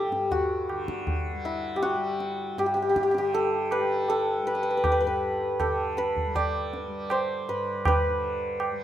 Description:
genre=indian classical, Hindustani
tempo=80 BPM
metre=4/4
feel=straight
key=G raga bilaval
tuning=A4 = 440 Hz
part: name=santur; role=melody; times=0.0-8.8 s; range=E4 to D5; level=-26 LUFS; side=equal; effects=none
part: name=tanpura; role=drone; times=0.0-8.8 s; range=G2 to G3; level=-38 LUFS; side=right 1 dB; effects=none
part: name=tabla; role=percussion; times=0.1-8.8 s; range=none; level=-30 LUFS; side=right 1 dB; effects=none
room=light reverb, small room reverb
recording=rough home demo mix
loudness=-24 LUFS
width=side -11 dB against mid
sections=0.0-8.8 A section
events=none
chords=none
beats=0.32 1.07 | 1.83 2.58 3.34 4.09 | 4.85 5.60 6.35 7.11 | 7.86 8.61

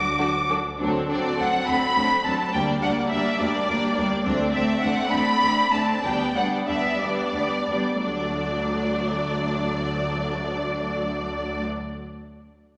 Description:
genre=quick classical-period movement for symphony orchestra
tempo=57-71 BPM (dotted quarters)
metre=6/8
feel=straight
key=D major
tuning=A4 = 440 Hz
part: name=rich studio violin section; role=melody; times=0.0-11.6 s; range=D5 to D6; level=-27 LUFS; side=equal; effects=none
part: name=dark French horn section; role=sustained chords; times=0.0-0.5 s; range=F#3 to D4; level=-36 LUFS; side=equal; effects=none
part: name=rich studio cello section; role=bass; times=0.0-11.6 s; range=D2 to F#4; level=-37 LUFS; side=equal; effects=none
part: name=rich studio double bass section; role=bass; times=0.0-11.6 s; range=D2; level=-37 LUFS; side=equal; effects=none
part: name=rich studio violin section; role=second line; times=0.2-11.6 s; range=D4 to D5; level=-31 LUFS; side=equal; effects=none
part: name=warm studio viola section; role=accompaniment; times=0.2-11.6 s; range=F#3 to D4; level=-29 LUFS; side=equal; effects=none
room=wet scoring stage reverb, RT60 1.7 s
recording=none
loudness=-24 LUFS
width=mono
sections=0.8-8.0 A section; 8.0-12.1 B section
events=slowing down 3.4-8.0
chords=0.0 D; 0.8 D7; 2.5 Gm/D; 4.2 D5; 6.0 G/D; 8.0 D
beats=| 0.80 1.67 | 2.54 3.39 | 4.25 5.12 | 6.04 7.00 | 8.03 9.05 | 10.07 11.08

